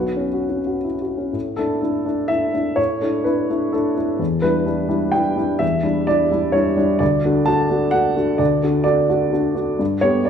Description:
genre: neoclassical minimalist piano.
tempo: 128 BPM.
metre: 3/4.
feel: rubato.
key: unclear.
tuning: A4 = 440 Hz.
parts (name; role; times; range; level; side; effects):
warm upright piano; solo; 0.0-10.3 s; B1 to A5; -17 LUFS; equal; none.
room: moderate recital hall reverb, RT60 1.3 s.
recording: recorded in a church or concert hall.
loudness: -17 LUFS.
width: side -8 dB against mid.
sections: 0.0-1.3 A section; 1.3-10.3 B section.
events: none.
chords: 0.0 Bsus2; 1.3 Asus4; 4.2 Em7; 7.0 D.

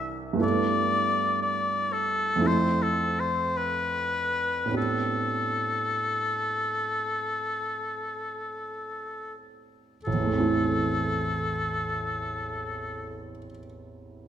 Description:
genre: classical, impressionist duo for oboe and grand piano.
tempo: 42-62 BPM.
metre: 4/4.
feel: rubato.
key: A minor.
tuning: A4 = 436 Hz.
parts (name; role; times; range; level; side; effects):
warm oboe; melody; 0.0-13.3 s; A4 to E5; -27 LUFS; left 2 dB; none.
warm concert grand piano; accompaniment; 0.0-14.3 s; A1 to A4; -29 LUFS; right 3 dB; none.
room: wet recital hall reverb, RT60 1.7 s.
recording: none.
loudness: -25 LUFS.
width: side -9 dB against mid.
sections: 0.0-10.1 A section; 10.1-14.3 B section.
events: slowing down 0.0-10.1.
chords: 0.4 G69; 2.5 Fmaj7; 4.8 Am11; 10.1 Am.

